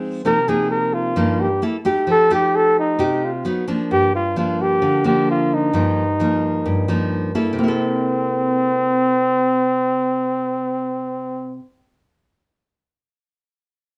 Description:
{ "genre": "bossa nova", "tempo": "131 BPM", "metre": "4/4", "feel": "straight", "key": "C minor", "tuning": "A4 = 435 Hz", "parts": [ { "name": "nylon-string guitar", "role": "accompaniment", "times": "0.0-11.7 s", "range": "G2 to A4", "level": "-23 LUFS", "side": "equal", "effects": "none" }, { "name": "breathy flugelhorn", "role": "melody", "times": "0.3-11.6 s", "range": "C4 to Bb4", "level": "-21 LUFS", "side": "equal", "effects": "none" } ], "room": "moderate studio reverb, RT60 0.7 s", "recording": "none", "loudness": "-19 LUFS", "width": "mono", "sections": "0.0-7.6 A section; 7.6-11.2 B section", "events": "none", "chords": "0.2 Cm7; 1.6 Gm69; 2.1 F9; 3.5 Bmaj7#11; 3.9 Gm7; 5.7 Ebadd9/G; 7.6 C6" }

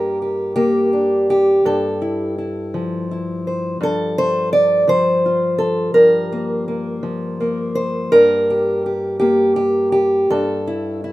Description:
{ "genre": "folk, solo fingerstyle acoustic guitar", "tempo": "56 BPM (dotted quarters)", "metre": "6/8", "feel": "rubato", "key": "G dorian", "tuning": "A4 = 440 Hz", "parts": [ { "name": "fingerpicked acoustic archtop guitar", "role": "solo", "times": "0.0-11.1 s", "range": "G2 to D5", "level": "-15 LUFS", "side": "equal", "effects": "none" } ], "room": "light reverb", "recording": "minimal, uncompressed stereo recording", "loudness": "-15 LUFS", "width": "side -17 dB against mid", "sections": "0.0-11.1 A section", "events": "none", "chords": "0.0 Gm; 1.6 Fmaj7/G; 3.8 G9sus4; 5.9 Bb5/G; 8.1 Gm; 10.3 Fmaj7/G (rootless)" }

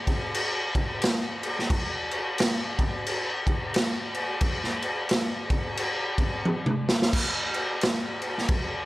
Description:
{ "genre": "metal", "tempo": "88 BPM", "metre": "4/4", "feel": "swing 60% on 8ths", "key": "none", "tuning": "none", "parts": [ { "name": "raw garage drum kit", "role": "drums", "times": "0.1-8.7 s", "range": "crash cymbal, kick drum, snare drum, toms", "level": "-24 LUFS", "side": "equal", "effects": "none" } ], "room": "little or no reverb", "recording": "none", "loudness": "-24 LUFS", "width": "side -18 dB against mid", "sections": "0.0-7.1 A section; 7.1-8.9 B section", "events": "drum fill 6.5-7.1", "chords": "none" }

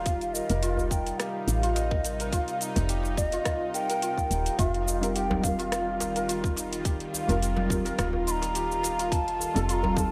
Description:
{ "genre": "organic downtempo", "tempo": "106 BPM", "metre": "4/4", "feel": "swing 54% on 16ths", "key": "unclear", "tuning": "A4 = 440 Hz", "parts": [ { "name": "mellow hollow bansuri", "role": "melody", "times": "0.0-10.1 s", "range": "Eb5 to C6", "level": "-34 LUFS", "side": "equal", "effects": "digital delay" }, { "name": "bowed-like drone", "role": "sustained chords", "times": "0.0-10.1 s", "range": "C3 to F4", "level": "-39 LUFS", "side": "equal", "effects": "built-in reverb, sidechain pumping" }, { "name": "santur", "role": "arpeggios", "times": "0.0-10.1 s", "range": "Eb4 to F5", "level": "-34 LUFS", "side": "equal", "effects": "digital delay" }, { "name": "woody FM bass", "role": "bass", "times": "0.0-10.1 s", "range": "Eb1 to A1", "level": "-33 LUFS", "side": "equal", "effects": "sidechain pumping" }, { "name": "afro-pop drum kit", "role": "drums", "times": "0.1-10.1 s", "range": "congas, hi-hat, rim click, shaker", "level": "-35 LUFS", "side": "equal", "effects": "studio reverb" }, { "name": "electronic kick drum", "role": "drums", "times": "0.1-10.1 s", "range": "none", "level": "-31 LUFS", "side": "equal", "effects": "studio reverb" }, { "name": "djembe", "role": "percussion", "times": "0.8-10.1 s", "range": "none", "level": "-40 LUFS", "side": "equal", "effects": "none" }, { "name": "felt-muted upright piano", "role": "accompaniment", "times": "5.0-10.1 s", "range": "G3 to Bb4", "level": "-37 LUFS", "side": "equal", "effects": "sidechain pumping, digital delay" } ], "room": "light reverb, small room reverb", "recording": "none", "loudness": "-28 LUFS", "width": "mono", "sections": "0.0-4.6 A section; 4.6-10.1 B section", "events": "none", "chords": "0.1 Cm/F; 4.6 Ebadd9/F; 9.1 F" }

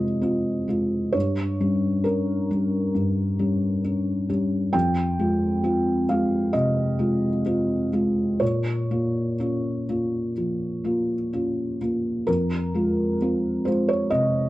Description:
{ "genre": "neoclassical minimalist piano", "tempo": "61-67 BPM", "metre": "4/4", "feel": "rubato", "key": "F minor", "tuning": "A4 = 440 Hz", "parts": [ { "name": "felt-muted upright piano", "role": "solo", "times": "0.0-14.5 s", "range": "F2 to G5", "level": "-21 LUFS", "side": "equal", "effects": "none" } ], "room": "studio reverb", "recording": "dry, close 1970s-style studio recording", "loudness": "-21 LUFS", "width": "side -16 dB against mid", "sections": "0.0-12.3 A section; 12.3-14.5 A section", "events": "none", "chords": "0.0 Fm; 1.1 Gdim; 4.7 Fm; 8.4 Bbm; 12.3 Fm" }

